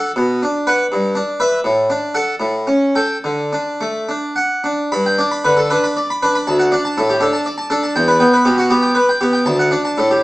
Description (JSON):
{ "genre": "classical, baroque-style suite movement for harpsichord", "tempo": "68-82 BPM (dotted quarters)", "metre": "6/8", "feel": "rubato", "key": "D major, G major from 4.9 s", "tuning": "A4 = 439 Hz", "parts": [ { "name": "harpsichord", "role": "solo", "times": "0.0-10.2 s", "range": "D2 to B5", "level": "-14 LUFS", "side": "equal", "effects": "none" } ], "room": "moderate stone room reverb, RT60 1.1 s", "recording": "small speaker sound", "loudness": "-14 LUFS", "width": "side -19 dB against mid", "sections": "0.0-4.9 A section; 4.9-10.2 A section", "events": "none", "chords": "0.2 Bm; 0.9 Em7/G; 1.6 D/A; 2.4 A7; 3.2 D; 4.9 G; 6.5 D5; 8.0 Em; 9.5 D", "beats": "| 0.17 0.91 | 1.65 2.40 | 3.23 4.08 | 4.91 5.70 | 6.47 7.22 | 7.95 8.70 | 9.46" }